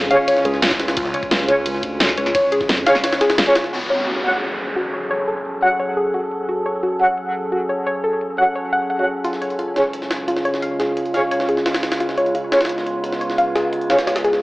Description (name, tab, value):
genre	dark technical drum and bass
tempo	174 BPM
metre	4/4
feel	straight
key	F# harmonic minor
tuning	A4 = 440 Hz
part	metallic inharmonic drone	sustained chords	0.0-14.4 s	C#3 to A4	-24 LUFS	equal	chorus, built-in reverb, sidechain pumping
part	vowel-sweep wobble bass	bass	0.0-2.9 s	C#2 to E#2	-25 LUFS	equal	chorus
part	jungle sampler-style drum kit	drums	0.0-3.7, 9.2-14.4 s	hi-hat, snare drum	-25 LUFS	equal	high-pass filter on hats, studio reverb, high-pass filter on snare, high-pass filter on room
part	soft round pluck	arpeggios	0.1-14.3 s	E#4 to F#5	-21 LUFS	left 1 dB	chorus, vintage 12-bit sampler grit, sidechain pumping, dub echo
part	warm brass ensemble	stabs	0.1-14.0 s	C#4 to F#5	-21 LUFS	equal	dub echo
part	dubstep drum kit	drums	0.1-14.3 s	crash cymbal, hi-hat, ride cymbal, snare drum	-22 LUFS	equal	low-pass filter on hats, studio reverb, low-pass filter on cymbals, low-pass filter on snare
part	electronic kick drum	drums	0.7-2.7 s	none	-32 LUFS	equal	studio reverb
part	phased detuned saw bass	bass	1.0-1.1 s	C#2	-27 LUFS	equal	phaser, overdrive, sidechain pumping
part	downlifter	sound effects	3.7-6.5 s	none	-26 LUFS	equal	none
room	moderate plate reverb, RT60 2.1 s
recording	AM radio sound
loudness	-17 LUFS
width	side -20 dB against mid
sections	0.0-3.7 A section; 3.7-14.4 B section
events	drop 0.0-3.7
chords	0.0 C#; 3.7 F#m; 9.2 C#